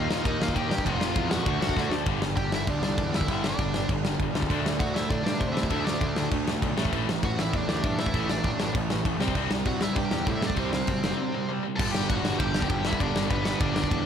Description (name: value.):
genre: punk rock.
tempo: 198 BPM.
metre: 4/4.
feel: straight.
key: unclear.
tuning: A4 = 440 Hz.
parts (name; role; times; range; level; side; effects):
high-gain lead guitar; melody; 0.0-14.0 s; B3 to A5; -32 LUFS; equal; distortion.
distorted electric guitar; riff; 0.0-11.6 s; F2 to Eb4; -34 LUFS; left 1 dB; overdrive.
overdriven semi-hollow guitar; riff; 0.0-14.1 s; F2 to Eb4; -32 LUFS; right 12 dB; none.
tight distorted guitar; riff; 0.0-14.1 s; F2 to Eb4; -33 LUFS; left 12 dB; distortion.
fuzz picked electric bass; bass; 0.0-14.0 s; F1 to D3; -32 LUFS; equal; overdrive.
big rock drum kit; drums; 0.1-14.0 s; crash cymbal, kick drum, ride cymbal, snare drum; -28 LUFS; equal; none.
room: little or no reverb.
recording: none.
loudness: -24 LUFS.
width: side -8 dB against mid.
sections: 0.0-2.1 A section; 2.1-11.8 B section; 11.8-14.1 A section.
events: drum fill 1.8-2.1; break 11.2-11.8.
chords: 0.0 Eb; 0.9 F5; 1.5 D; 2.1 G5; 4.5 D5; 6.8 A5; 9.2 C; 11.8 G.